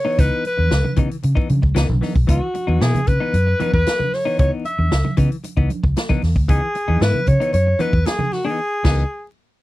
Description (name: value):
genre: funk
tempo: 114 BPM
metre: 4/4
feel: straight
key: C# minor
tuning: A4 = 436 Hz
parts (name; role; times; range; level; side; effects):
- warm alto saxophone; melody; 0.0-9.2 s; F#4 to E5; -21 LUFS; equal; none
- clean electric guitar; accompaniment; 0.0-9.0 s; E3 to E4; -25 LUFS; left 5 dB; none
- vintage muted fingered electric bass; bass; 0.2-9.0 s; B1 to C#3; -18 LUFS; equal; none
- swinging big-band drum kit; drums; 0.2-9.0 s; crash cymbal, hi-hat, kick drum, snare drum; -20 LUFS; equal; none
- congas; percussion; 0.2-8.4 s; none; -27 LUFS; right 4 dB; none
room: little or no reverb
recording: dry, close 1970s-style studio recording, vinyl crackle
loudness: -16 LUFS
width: side -17 dB against mid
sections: 0.0-9.6 A section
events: band accent 8.6-9.6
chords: 0.0 C#m9